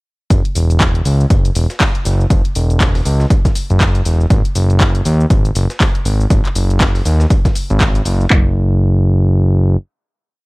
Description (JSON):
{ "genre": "deep house", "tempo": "120 BPM", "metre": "4/4", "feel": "swing 59% on 16ths", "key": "unclear", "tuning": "A4 = 440 Hz", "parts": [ { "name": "smooth synth bass", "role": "bass", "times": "0.3-9.8 s", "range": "E1 to D#2", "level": "-13 LUFS", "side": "equal", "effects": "sidechain pumping" }, { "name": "breakbeat sampler-style drum kit", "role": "drums", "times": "0.3-8.2 s", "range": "hi-hat, snare drum", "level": "-31 LUFS", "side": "equal", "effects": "none" }, { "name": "house drum kit", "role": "drums", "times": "0.3-8.3 s", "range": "cabasa, handclaps, hi-hat", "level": "-21 LUFS", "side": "left 1 dB", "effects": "overdrive" }, { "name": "punchy analog drum machine", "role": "drums", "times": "0.3-8.4 s", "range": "handclaps, kick drum", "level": "-13 LUFS", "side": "equal", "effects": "none" } ], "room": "digital ambience", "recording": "none", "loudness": "-11 LUFS", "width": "side -26 dB against mid", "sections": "0.3-8.3 drop; 8.3-10.5 final note", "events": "drop 0.3-8.3", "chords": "none" }